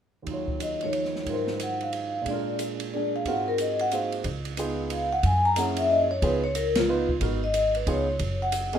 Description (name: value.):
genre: jazz, small-group swing and bop.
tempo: 182 BPM.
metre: 3/4.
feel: swing 63% on 8ths.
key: unclear.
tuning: A4 = 439 Hz.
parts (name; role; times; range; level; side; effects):
warm grand piano; accompaniment; 0.2-8.8 s; Eb2 to Db5; -30 LUFS; right 3 dB; none.
open jazz drum kit; drums; 0.3-8.8 s; hi-hat, kick drum, ride cymbal, snare drum; -34 LUFS; right 2 dB; none.
vibraphone with medium mallets; melody; 0.6-8.8 s; F4 to Bb5; -26 LUFS; left 2 dB; none.
upright bass; bass; 4.2-8.8 s; Gb1 to Gb2; -28 LUFS; equal; none.
room: light reverb.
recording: minimal, uncompressed stereo recording.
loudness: -24 LUFS.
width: side -9 dB against mid.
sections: 0.3-4.2 A section; 4.2-8.8 B section.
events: break 3.9-4.2; band accent 6.7.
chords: 0.3 Ebm9; 1.3 Ab13; 2.3 Bb7; 3.3 Ab13; 4.2 Db7; 5.2 Gb7; 6.2 Db7; 7.2 Abm7; 7.9 Db7; 8.2 Gb5.